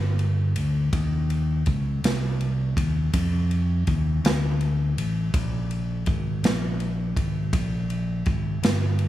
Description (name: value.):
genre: slow gospel.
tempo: 55 BPM (dotted quarters).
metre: 6/8.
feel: straight.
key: unclear.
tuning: A4 = 441 Hz.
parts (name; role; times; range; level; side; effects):
fingered electric bass; bass; 0.0-9.1 s; G1 to F2; -23 LUFS; equal; none.
swinging big-band drum kit; drums; 0.2-9.1 s; kick drum, ride cymbal, snare drum; -27 LUFS; equal; none.
room: light reverb.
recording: studio ambience.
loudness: -22 LUFS.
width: side -14 dB against mid.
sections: 0.0-9.1 A section.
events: none.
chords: none.